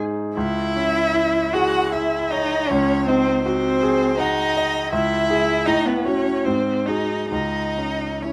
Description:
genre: classical, slow romantic movement for piano trio.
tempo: 66-82 BPM.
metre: 3/4.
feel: rubato.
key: C# minor.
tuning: A4 = 441 Hz.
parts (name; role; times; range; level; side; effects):
clear grand piano; accompaniment; 0.0-8.3 s; C#2 to F#5; -25 LUFS; equal; none.
warm violin; melody; 0.4-8.3 s; B4 to F#5; -28 LUFS; equal; none.
rich cello; second line; 0.4-8.3 s; B3 to F#4; -24 LUFS; equal; none.
room: moderate stone room reverb, RT60 0.9 s.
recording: none.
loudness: -21 LUFS.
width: mono.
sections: 0.0-8.3 A section.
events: none.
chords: 0.4 C#m; 2.7 G#7/C#; 4.9 C#m; 5.7 F#m/A; 6.5 G#7; 7.3 N.C..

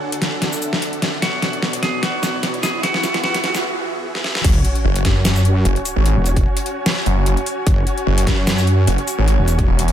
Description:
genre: heavy wobble dubstep.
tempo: 149 BPM.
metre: 4/4.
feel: swing 54% on 16ths, half-time.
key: unclear.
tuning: A4 = 445 Hz.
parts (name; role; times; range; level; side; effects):
supersaw chords; sustained chords; 0.0-9.9 s; B2 to F#5; -28 LUFS; right 1 dB; sidechain pumping, low-pass filter.
riser and sub drop; sound effects; 1.0-6.1 s; none; -26 LUFS; equal; none.
airy breathy pad; texture; 0.0-9.9 s; B3 to C#6; -27 LUFS; right 1 dB; chorus, sidechain pumping.
dubstep drum kit; drums; 0.1-9.9 s; crash cymbal, hi-hat, shaker, snare drum; -21 LUFS; left 1 dB; overdrive.
clean electric guitar; melody; 1.2-3.6 s; F#4 to G#4; -24 LUFS; right 1 dB; dub echo.
wobble bass; bass; 4.4-9.7 s; E1 to F#2; -16 LUFS; equal; chorus, overdrive.
electronic kick drum; drums; 4.4-9.7 s; none; -18 LUFS; equal; overdrive.
snarling distorted saw bass; bass; 4.8-9.9 s; E1 to G#1; -16 LUFS; equal; overdrive.
room: little or no reverb.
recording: high-pass filter.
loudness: -16 LUFS.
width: side -10 dB against mid.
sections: 0.0-4.4 A section; 4.4-9.9 B section.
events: build-up 0.0-4.4; drum fill 0.0-3.6, 4.1-4.4; riser 1.0-3.6; break 3.6-4.4; drop 4.4-9.9; impact 4.4-6.1.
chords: 0.0 D; 1.2 Bmadd9; 2.8 E.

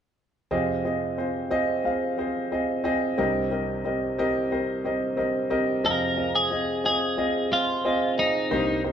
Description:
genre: pop.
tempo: 90 BPM.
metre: 4/4.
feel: straight.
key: F minor.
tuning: A4 = 440 Hz.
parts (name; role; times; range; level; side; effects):
warm concert grand piano; accompaniment; 0.5-8.9 s; C2 to F5; -24 LUFS; equal; none.
twelve-string electric guitar; melody; 5.9-8.8 s; Eb4 to Bb4; -24 LUFS; left 1 dB; none.
room: wet studio reverb, RT60 0.8 s.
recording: band playing live in one room.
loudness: -23 LUFS.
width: side -8 dB against mid.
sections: 0.5-5.8 A section; 5.8-8.9 B section.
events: none.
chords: 0.5 Fm7; 3.2 Cm7; 5.8 Fm7.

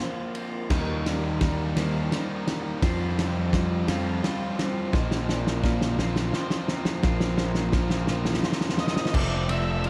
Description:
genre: post-rock.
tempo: 57 BPM (dotted quarters).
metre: 6/8.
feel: straight.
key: unclear.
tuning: A4 = 440 Hz.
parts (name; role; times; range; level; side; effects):
airy breathy pad; sustained chords; 0.1-9.9 s; C4 to C6; -43 LUFS; equal; none.
clean electric guitar; arpeggios; 0.0-9.9 s; Eb3 to C5; -40 LUFS; equal; none.
vibraphone with hard mallets; arpeggios; 0.0-9.9 s; C5 to F5; -42 LUFS; equal; tape echo.
raw garage guitar; riff; 0.0-9.9 s; F2 to F4; -36 LUFS; equal; none.
loose indie drum kit; drums; 0.3-9.9 s; crash cymbal, kick drum, ride cymbal, snare drum; -30 LUFS; equal; none.
cranked stack guitar; riff; 0.7-9.9 s; F2 to F4; -36 LUFS; equal; overdrive.
fuzz picked electric bass; bass; 0.7-9.9 s; F1 to F2; -30 LUFS; equal; overdrive.
octave-fuzz lead guitar; melody; 8.8-9.9 s; D5 to F5; -33 LUFS; equal; distortion, tape echo.
room: light reverb.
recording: dark, warm production.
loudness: -26 LUFS.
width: mono.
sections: 0.0-9.1 A section.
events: build-up 0.0-9.1; drum fill 0.0-9.1.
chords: 0.0 Bbsus2; 0.7 Eb; 2.8 Fsus2; 4.9 Bbsus2; 9.1 F6.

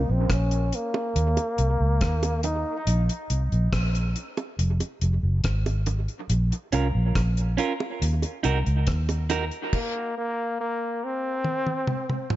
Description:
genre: dub reggae.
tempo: 70 BPM.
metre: 4/4.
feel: straight.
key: Bb minor.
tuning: A4 = 441 Hz.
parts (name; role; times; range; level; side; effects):
brilliant trombone; melody; 0.0-2.8, 9.7-12.3 s; Bb3 to Eb4; -28 LUFS; left 1 dB; low-pass filter, dub echo.
vintage muted fingered electric bass; bass; 0.0-9.5 s; F1 to Eb2; -23 LUFS; equal; none.
deep reggae drum kit; drums; 0.3-12.4 s; crash cymbal, hi-hat, kick drum, rim click, toms; -29 LUFS; equal; none.
bongos; percussion; 0.9-9.5 s; none; -35 LUFS; right 5 dB; dub echo.
electric guitar at the edge of break-up; accompaniment; 6.7-9.4 s; Db4 to Bb4; -30 LUFS; right 5 dB; low-pass filter, dub echo.
room: light reverb, small room ambience.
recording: echo-heavy mix, nothing above 7.6 kHz.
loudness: -23 LUFS.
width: side -14 dB against mid.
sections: 0.0-12.4 A section.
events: break 0.0-6.3; filter sweep 0.0-12.4; stop 9.7-12.4; drum fill 11.4-12.4.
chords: 0.0 Bbm; 1.2 Eb5; 2.9 Bbsus2; 4.6 Fm; 6.3 Bbm; 8.0 Ebm; 9.7 N.C..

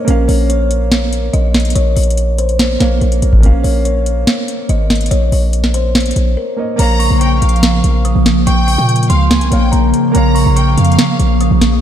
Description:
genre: hip hop, trap.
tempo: 143 BPM.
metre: 4/4.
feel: half-time.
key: Bb minor.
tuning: A4 = 440 Hz.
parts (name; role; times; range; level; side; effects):
kalimba; melody; 0.0-11.8 s; Bb4 to Eb6; -20 LUFS; left 2 dB; low-pass filter, ping-pong delay.
clear grand piano; accompaniment; 0.0-11.8 s; Bb3 to F5; -22 LUFS; right 4 dB; low-pass filter.
hard-hitting 808-style bass; bass; 0.1-11.8 s; Ab1 to Bb2; -13 LUFS; equal; none.
booming analog drum machine; drums; 0.1-11.7 s; crash cymbal, hi-hat, kick drum, snare drum; -16 LUFS; equal; none.
warm studio violin section; second line; 6.8-11.4 s; F5 to Bb5; -21 LUFS; left 1 dB; ping-pong delay.
hollow soft pad; sustained chords; 6.8-11.8 s; Db3 to Bb3; -15 LUFS; right 1 dB; ensemble chorus.
room: moderate lush hall reverb, RT60 1.9 s, studio reverb.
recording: dreamy mix soaked in reverb.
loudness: -10 LUFS.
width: side -10 dB against mid.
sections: 0.0-6.8 A section; 6.8-11.8 B section.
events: break 6.4-6.8.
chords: 0.0 Bbm.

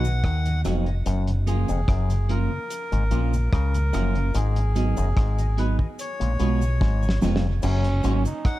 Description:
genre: roots reggae.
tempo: 73 BPM.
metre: 4/4.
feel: straight.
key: F# major.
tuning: A4 = 440 Hz.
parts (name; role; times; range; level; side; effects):
melodica; melody; 0.0-8.6 s; G#4 to F#5; -33 LUFS; left 1 dB; tape echo.
semi-hollow electric guitar; accompaniment; 0.0-8.2 s; E#3 to G#4; -31 LUFS; right 6 dB; spring reverb, tape echo.
tonewheel organ; accompaniment; 0.0-8.3 s; F#2 to F#4; -35 LUFS; left 2 dB; overdrive, slow rotary speaker.
auto-wah clav; riff; 0.0-8.2 s; E#2 to D#3; -32 LUFS; left 5 dB; overdrive.
deep dub fingered electric bass; bass; 0.0-8.2 s; E#1 to D#2; -22 LUFS; equal; none.
cabasa; percussion; 0.0-8.4 s; none; -44 LUFS; equal; none.
cloth-damped thuddy drum kit; drums; 0.2-8.6 s; crash cymbal, hi-hat, kick drum, rim click, snare drum; -25 LUFS; equal; none.
growling trombone; second line; 7.6-8.6 s; C#4 to D#4; -29 LUFS; right 4 dB; tape echo.
room: little or no reverb.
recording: dark, warm production.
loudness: -21 LUFS.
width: side -16 dB against mid.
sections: 0.0-7.6 A section.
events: drum fill 6.8-7.6.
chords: 0.0 G#m7; 1.1 F#maj7; 4.3 G#m7; 6.0 C#7; 7.6 F#.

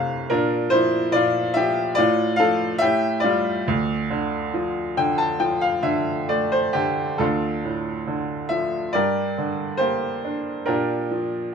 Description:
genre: classical, lyrical solo piano.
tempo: 69 BPM.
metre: 4/4.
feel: uneven beats, rubato.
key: D minor.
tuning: A4 = 441 Hz.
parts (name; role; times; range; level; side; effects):
bright baby grand piano; solo; 0.0-11.5 s; C2 to A5; -20 LUFS; equal; none.
room: light reverb.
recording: minimal, uncompressed stereo recording.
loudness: -20 LUFS.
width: side -6 dB against mid.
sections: 0.0-7.2 A section; 7.2-11.5 B section.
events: grand piano fill 0.0-0.3, 4.5-7.2.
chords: 0.3 Bb; 2.0 Dm/A; 2.8 A5; 3.7 Dm; 8.9 Gm; 10.7 Bb6.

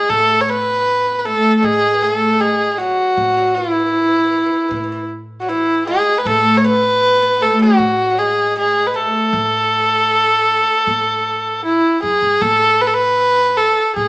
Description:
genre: Turkish makam ensemble.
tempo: 78 BPM.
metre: 4/4.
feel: straight.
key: unclear.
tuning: A4 = 440 Hz.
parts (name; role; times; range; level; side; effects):
rich kamancheh; melody; 0.0-14.1 s; E4 to C#5; -13 LUFS; equal; none.
oud; second line; 0.0-11.6 s; E3 to B3; -20 LUFS; equal; none.
upright bass; bass; 0.1-14.1 s; F#2 to A2; -31 LUFS; equal; none.
room: moderate large studio reverb, RT60 1.1 s.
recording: band playing live in one room, small speaker sound.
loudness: -12 LUFS.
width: side -22 dB against mid.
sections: 0.1-12.4 A section; 12.4-14.1 A section.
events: none.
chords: none.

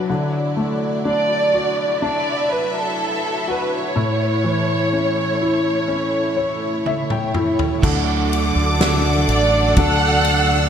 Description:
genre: pop ballad.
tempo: 62 BPM.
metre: 4/4.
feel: straight.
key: D major.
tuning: A4 = 440 Hz.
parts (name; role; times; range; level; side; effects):
clear baby grand piano; accompaniment; 0.0-10.7 s; A2 to G5; -22 LUFS; left 2 dB; analog chorus.
warm studio string section; sustained chords; 0.0-10.7 s; F#3 to E6; -24 LUFS; equal; none.
warm studio violin section; melody; 1.1-10.7 s; A4 to F#5; -20 LUFS; right 2 dB; none.
natural country drum kit; drums; 6.9-10.5 s; crash cymbal, kick drum, ride cymbal, snare drum, toms; -23 LUFS; equal; gated reverb.
warm studio cello section; second line; 7.8-10.7 s; D4; -25 LUFS; right 1 dB; none.
twelve-string electric guitar; arpeggios; 7.8-10.7 s; D3 to F#4; -26 LUFS; right 2 dB; wide subtle chorus, digital delay.
mellow fretless electric bass; bass; 7.8-10.7 s; A1 to D2; -20 LUFS; right 1 dB; none.
room: moderate lush hall reverb, RT60 3.2 s.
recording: bright 1980s-style digital production.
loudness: -16 LUFS.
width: side -8 dB against mid.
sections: 0.0-7.8 A section; 7.8-10.7 B section.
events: grand piano fill 5.9-7.8; drum fill 6.9-7.8.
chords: 0.1 Dadd9; 4.0 A; 7.8 D.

